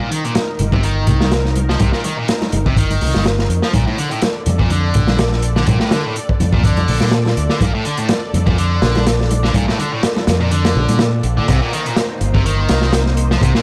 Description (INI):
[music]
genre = breakbeat, breaks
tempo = 124 BPM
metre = 4/4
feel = swing 55% on 16ths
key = C dorian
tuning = A4 = 441 Hz
[part]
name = lush unison pad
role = sustained chords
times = 0.0-13.6 s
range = Bb3 to D5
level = -30 LUFS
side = equal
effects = chorus, phaser, sidechain pumping
[part]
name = distorted electric guitar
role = riff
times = 0.0-13.6 s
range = A2 to F3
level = -24 LUFS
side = equal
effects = overdrive, low-pass filter, analog delay
[part]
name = crunchy breakbeat drum kit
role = drums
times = 0.1-13.6 s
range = crash cymbal, hi-hat, kick drum, snare drum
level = -20 LUFS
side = equal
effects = none
[part]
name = congas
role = percussion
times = 0.4-11.1 s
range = none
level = -25 LUFS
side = equal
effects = none
[part]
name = fingered electric bass with an envelope filter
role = bass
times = 0.6-13.5 s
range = G1 to Bb2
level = -19 LUFS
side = equal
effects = none
[sound]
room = studio ambience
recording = dry, gritty hardware recording, vinyl crackle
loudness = -16 LUFS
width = mono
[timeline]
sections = 0.0-11.5 A section; 11.5-13.6 B section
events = drop 11.5-13.6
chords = 0.0 Cm7; 3.7 Bbmaj7; 11.5 Cm7